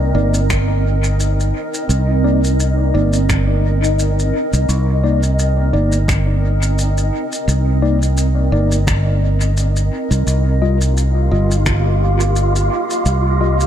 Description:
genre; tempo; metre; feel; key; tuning
ambient dub; 86 BPM; 4/4; swing 55% on 16ths; C minor; A4 = 441 Hz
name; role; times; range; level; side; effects
granular cloud pad; sustained chords; 0.0-13.7 s; Bb3 to Eb5; -21 LUFS; right 1 dB; built-in reverb
fingered electric bass; bass; 0.0-13.7 s; G1 to C2; -15 LUFS; equal; none
mellow tine electric piano; stabs; 0.1-13.6 s; G3 to Eb5; -23 LUFS; moving between left 8 dB and right 1 dB; auto-pan, dub echo
shaker and finger snaps; drums; 0.3-13.7 s; none; -26 LUFS; left 1 dB; dub echo
electronic kick drum; drums; 0.5-11.8 s; none; -22 LUFS; equal; overdrive
wind-like tuned noise texture; texture; 10.9-13.7 s; F4 to F5; -23 LUFS; right 2 dB; built-in reverb
room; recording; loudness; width
small room ambience; echo-heavy mix; -14 LUFS; side -10 dB against mid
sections
0.0-13.7 A section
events
none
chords
0.0 Cm9; 10.3 Ebadd9

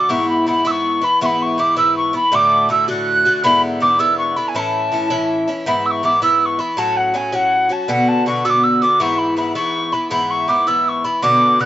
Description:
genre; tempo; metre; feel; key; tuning
celtic folk, Celtic jig; 108 BPM (dotted quarters); 6/8; straight; unclear; A4 = 440 Hz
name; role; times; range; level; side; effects
mellow wooden whistle; melody; 0.0-11.7 s; F#5 to F#6; -15 LUFS; equal; none
Irish bouzouki; accompaniment; 0.0-11.7 s; G#2 to F#4; -20 LUFS; left 1 dB; slapback echo
room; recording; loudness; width
little or no reverb; recorded outdoors, with no room sound, nothing above 7.7 kHz; -14 LUFS; side -13 dB against mid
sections
0.0-5.7 A section; 5.7-11.7 A section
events
none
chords
0.1 E; 2.3 D; 3.4 E7; 4.6 A; 5.7 E; 6.8 F#m; 7.9 Bm; 9.0 E

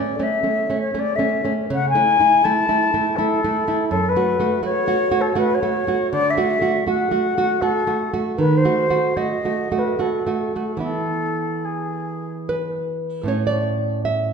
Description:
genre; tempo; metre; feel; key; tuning
romantic duo for flute and classical guitar; 70-84 BPM; 3/4; rubato; A major from 3.9 s; A4 = 435 Hz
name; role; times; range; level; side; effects
mellow concert flute; melody; 0.0-12.5 s; G#4 to A5; -20 LUFS; left 4 dB; none
nylon-string guitar; accompaniment; 0.0-14.3 s; F#2 to E5; -21 LUFS; right 4 dB; none
room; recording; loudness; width
wet recital hall reverb, RT60 1.8 s; recorded in a church or concert hall; -18 LUFS; side -6 dB against mid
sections
0.0-13.3 A section; 13.3-14.3 B section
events
none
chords
0.0 F#m/A (rootless); 1.7 A5; 3.9 F#m; 6.1 Dadd9 (rootless); 8.4 D#dim; 10.8 E; 13.3 A

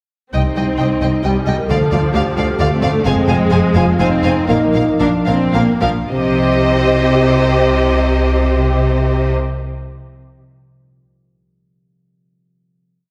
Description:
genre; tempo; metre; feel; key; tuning
cinematic, heroic adventure film score; 105-133 BPM; 3/4; straight; C minor; A4 = 441 Hz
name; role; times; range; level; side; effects
dark symphonic violin section; melody; 0.3-9.3 s; Eb5 to Ab5; -25 LUFS; equal; none
clear symphonic violin section; second line; 0.3-9.3 s; Bb4 to F5; -26 LUFS; equal; none
warm symphonic viola section; accompaniment; 0.3-9.3 s; F3 to G4; -23 LUFS; equal; none
concert harp; arpeggios; 0.3-10.0 s; Bb2 to F5; -24 LUFS; equal; none
rich symphonic cello section; bass; 0.3-9.3 s; C2 to C3; -22 LUFS; equal; none
warm studio double bass section; bass; 0.3-9.3 s; F1 to D2; -22 LUFS; equal; none
warm French horn section; sustained chords; 0.4-9.3 s; C4 to Bb4; -22 LUFS; equal; none
room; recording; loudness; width
wet scoring stage reverb, RT60 1.9 s; heard from further back in the room; -15 LUFS; mono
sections
0.3-6.1 theme; 6.1-9.5 final chord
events
slowing down 2.4-6.1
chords
0.3 Cm; 1.7 Dm; 3.1 Fm; 4.5 Bb; 6.1 Cm

